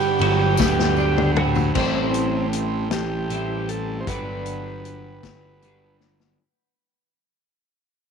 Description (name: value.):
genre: psychedelic rock.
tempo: 52 BPM (dotted quarters).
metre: 6/8.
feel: straight.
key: unclear.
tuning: A4 = 440 Hz.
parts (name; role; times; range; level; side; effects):
overdriven combo organ; melody; 0.0-6.0 s; C4 to C5; -26 LUFS; right 2 dB; tape echo.
pedal harmonium; sustained chords; 0.0-6.4 s; A4 to C6; -29 LUFS; right 14 dB; none.
twelve-string electric guitar; riff; 0.0-6.4 s; G2 to E4; -26 LUFS; right 1 dB; rotary speaker, double-tracked left and right.
tambourine; percussion; 0.0-1.6 s; none; -37 LUFS; left 16 dB; none.
fuzz picked electric bass; bass; 0.2-6.4 s; G1 to D2; -25 LUFS; equal; overdrive.
vintage drum kit; drums; 0.2-6.4 s; crash cymbal, hi-hat, kick drum, ride cymbal, snare drum, toms; -25 LUFS; left 7 dB; none.
room: light reverb, small room ambience.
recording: 1960s-style stereo with parts hard left and right.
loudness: -19 LUFS.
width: side -6 dB against mid.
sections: 0.0-1.7 A section; 1.7-6.4 B section.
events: drum fill 0.6-1.7, 6.0-6.4; fade-out 1.7-6.4.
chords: 0.0 Gmaj7; 1.7 Am7; 4.1 Gmaj7.